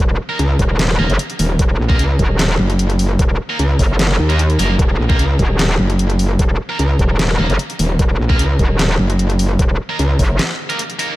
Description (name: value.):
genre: heavy wobble dubstep.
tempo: 150 BPM.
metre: 4/4.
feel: half-time.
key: Eb minor.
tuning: A4 = 440 Hz.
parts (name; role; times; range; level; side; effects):
metallic wobble bass; bass; 0.0-10.4 s; Eb1 to Gb1; -16 LUFS; equal; chorus, overdrive.
heavy high-gain guitar; stabs; 0.3-11.1 s; Bb3 to Bb4; -25 LUFS; right 1 dB; distortion, diffuse ambient delay.
metallic wobble bass; bass; 0.4-10.2 s; Eb1 to Eb2; -14 LUFS; equal; distortion, chorus, overdrive.
dubstep drum kit; drums; 0.4-11.1 s; hi-hat, snare drum; -23 LUFS; equal; none.
electronic kick drum; drums; 0.6-10.3 s; none; -16 LUFS; equal; overdrive.
room: light reverb.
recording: none.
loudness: -13 LUFS.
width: side -17 dB against mid.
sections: 0.0-11.2 A section.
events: break 10.4-11.2.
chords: 0.0 Eb5.